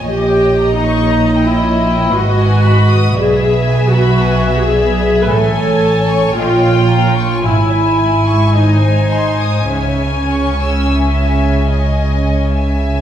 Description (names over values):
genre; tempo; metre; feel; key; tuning
classical, slow romantic movement for string orchestra; 49-58 BPM; 3/4; rubato; C# minor; A4 = 440 Hz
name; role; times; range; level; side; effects
dark studio violin section; melody; 0.0-13.0 s; D#5 to G#5; -22 LUFS; left 5 dB; none
dark studio violin section; second line; 0.0-13.0 s; B4 to E6; -21 LUFS; left 3 dB; none
dark studio cello section; bass; 0.0-13.0 s; G#2 to C#3; -16 LUFS; right 1 dB; none
dark studio double bass section; bass; 0.0-13.0 s; G#1 to C#2; -17 LUFS; right 2 dB; none
warm studio viola section; accompaniment; 0.1-12.7 s; C#4 to B4; -16 LUFS; equal; none
room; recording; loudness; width
wet recital hall reverb, RT60 1.5 s; recorded in a church or concert hall; -11 LUFS; side -10 dB against mid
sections
0.0-13.0 A section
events
none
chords
0.1 D#7/A#; 2.1 G#m; 3.2 E7/B; 5.3 Amaj7; 6.4 D#7/A#; 7.4 C#m/G#; 8.5 G#; 9.7 C#m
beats
| 0.06 1.11 2.14 | 3.19 4.24 5.29 | 6.36 7.43 8.55 | 9.72 10.93 12.12